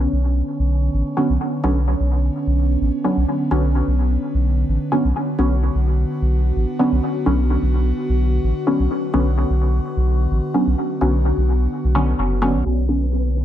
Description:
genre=dub techno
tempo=128 BPM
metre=4/4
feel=swing 53% on 16ths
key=B minor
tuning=A4 = 445 Hz
part: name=airy breathy pad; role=sustained chords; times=0.0-13.4 s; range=D3 to F#4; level=-24 LUFS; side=equal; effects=chorus, phaser
part: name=soft dub sub bass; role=bass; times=0.0-13.4 s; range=F#1 to B1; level=-18 LUFS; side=equal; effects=none
part: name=filtered dub chord stab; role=stabs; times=1.2-13.0 s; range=D3 to C#4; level=-21 LUFS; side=equal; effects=chorus, phaser, dub echo
part: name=flickering grainy texture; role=texture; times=13.0-13.4 s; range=B3 to B4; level=-34 LUFS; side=left 5 dB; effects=built-in reverb
room=light reverb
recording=low-pass filter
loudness=-17 LUFS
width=side -11 dB against mid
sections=0.0-12.7 A section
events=none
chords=0.0 Bmadd9

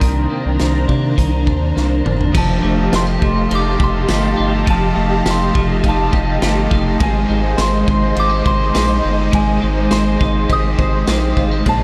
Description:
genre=dream pop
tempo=103 BPM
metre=4/4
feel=straight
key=unclear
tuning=A4 = 440 Hz
part: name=soft synth bell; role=melody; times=0.0-11.8 s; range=Ab5 to Eb6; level=-25 LUFS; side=equal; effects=chorus, phaser, tape echo
part: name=string machine, violas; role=sustained chords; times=0.0-11.8 s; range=Eb3 to Bb5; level=-24 LUFS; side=equal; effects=phaser, ensemble chorus
part: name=clean electric guitar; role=arpeggios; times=0.0-11.8 s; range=Bb2 to C5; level=-23 LUFS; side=equal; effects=lush chorus, tape echo
part: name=round analog bass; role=bass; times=0.0-11.8 s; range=F1 to C3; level=-21 LUFS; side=equal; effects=none
part: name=raw garage drum kit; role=drums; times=0.0-11.8 s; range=crash cymbal, hi-hat, kick drum, ride cymbal, snare drum, tambourine, toms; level=-22 LUFS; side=equal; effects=none
part: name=biting overdriven guitar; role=accompaniment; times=2.3-11.8 s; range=Bb2 to C5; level=-30 LUFS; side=equal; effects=harmonic tremolo, subtle chorus
room=moderate huge ambient reverb, RT60 7.9 s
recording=dreamy mix soaked in reverb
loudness=-16 LUFS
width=mono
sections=0.0-2.3 A section; 2.3-11.8 B section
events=drum fill 1.8-2.3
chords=0.0 Cm9; 2.3 F9; 7.0 Abmaj9

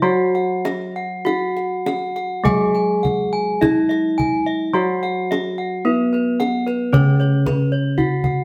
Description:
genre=Javanese gamelan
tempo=48-58 BPM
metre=4/4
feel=straight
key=unclear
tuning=A4 = 440 Hz
part: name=gamelan-type bronze metallophone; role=melody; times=0.0-8.4 s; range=B3-25c to G#4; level=-23 LUFS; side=equal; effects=none
part: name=gamelan-type bronze metallophone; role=accompaniment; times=0.0-8.4 s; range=C#3 to G#3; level=-26 LUFS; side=equal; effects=none
part: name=gamelan-type bronze metallophone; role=arpeggios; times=0.0-8.4 s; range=B4-25c to G#5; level=-27 LUFS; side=equal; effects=none
part: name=gamelan-type bossed gongs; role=bass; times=0.0-8.4 s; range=C#3 to F#4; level=-26 LUFS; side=equal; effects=none
part: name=kendang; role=percussion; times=0.4-8.4 s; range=none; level=-26 LUFS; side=equal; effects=none
room=wet stone room reverb, RT60 1.2 s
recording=band playing live in one room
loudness=-19 LUFS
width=mono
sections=0.0-8.4 A section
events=drum fill 8.0-8.4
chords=none

